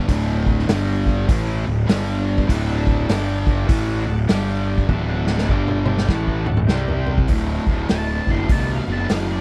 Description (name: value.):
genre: blues rock power trio and southern rock.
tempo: 100 BPM.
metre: 4/4.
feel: swing 63% on 8ths.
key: D mixolydian.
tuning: A4 = 437 Hz.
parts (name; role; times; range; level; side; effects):
fuzz guitar; riff; 0.0-9.4 s; D2 to C4; -26 LUFS; equal; distortion.
fuzz picked electric bass; bass; 0.0-9.4 s; D1 to C2; -24 LUFS; equal; overdrive.
vintage drum kit; drums; 0.1-9.3 s; hi-hat, kick drum, snare drum, toms; -23 LUFS; equal; none.
overdriven tonewheel organ; sustained chords; 2.5-7.2 s; C4 to G5; -36 LUFS; equal; slow rotary speaker.
octave-fuzz lead guitar; melody; 7.9-9.4 s; D5 to C6; -31 LUFS; equal; distortion.
room: little or no reverb.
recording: none.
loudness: -20 LUFS.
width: mono.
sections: 0.0-7.3 A section; 7.3-9.4 B section.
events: drum fill 4.9-7.3; lead electric guitar solo 7.3-9.4.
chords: 0.1 D5; 0.7 G5; 1.3 D5; 1.9 G5; 2.5 D; 3.1 G5; 3.7 D; 4.3 G5; 4.9 D; 5.5 G5; 6.1 D; 6.7 C5; 7.3 D.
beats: | 0.08 0.68 1.28 1.88 | 2.48 3.08 3.68 4.29 | 4.89 5.49 6.09 6.69 | 7.29 7.89 8.50 9.10.